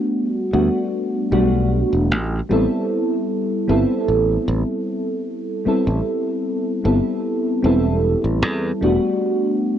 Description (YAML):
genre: vaporwave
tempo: 76 BPM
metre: 4/4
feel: straight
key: unclear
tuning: A4 = 440 Hz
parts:
  - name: mellow FM electric piano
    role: accompaniment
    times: 0.0-9.8 s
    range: G3 to A4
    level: -18 LUFS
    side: equal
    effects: lush chorus, cassette tape, tape echo
  - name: modern bright fingered electric bass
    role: bass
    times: 0.5-9.0 s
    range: E1 to E2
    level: -20 LUFS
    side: equal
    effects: tube saturation
room: moderate scoring stage reverb, RT60 1.6 s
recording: cassette tape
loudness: -17 LUFS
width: side -10 dB against mid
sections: 0.0-9.8 A section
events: none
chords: 0.0 Em11 (rootless); 2.1 Am9; 8.8 Em11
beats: 0.14 0.93 1.72 | 2.50 3.29 4.08 4.87 | 5.66 6.45 7.24 8.03 | 8.82 9.61